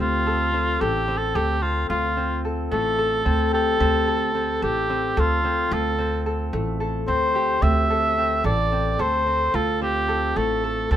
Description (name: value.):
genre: contemporary instrumental, chamber music in an uneven meter.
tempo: 220 BPM (eighths).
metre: 7/8.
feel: straight.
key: D minor.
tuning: A4 = 440 Hz.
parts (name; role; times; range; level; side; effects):
warm cor anglais; melody; 0.0-11.0 s; F4 to E5; -22 LUFS; right 1 dB; none.
concert harp; arpeggios; 0.0-11.0 s; A3 to A4; -26 LUFS; left 3 dB; none.
upright bass; bass; 0.0-11.0 s; A1 to D2; -25 LUFS; right 1 dB; none.
room: light reverb.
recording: minimal, uncompressed stereo recording.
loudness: -20 LUFS.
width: side -11 dB against mid.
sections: 0.0-11.0 A section.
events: none.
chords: 0.0 Dm7.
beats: 0.26 0.54 0.81 1.08 1.35 1.63 | 1.90 2.17 2.44 2.72 2.99 3.26 3.53 | 3.81 4.08 4.35 4.62 4.90 5.17 5.44 | 5.72 5.99 6.26 6.54 6.81 7.08 7.35 | 7.63 7.90 8.17 8.45 8.72 8.99 9.27 | 9.54 9.81 10.09 10.36 10.63 10.91.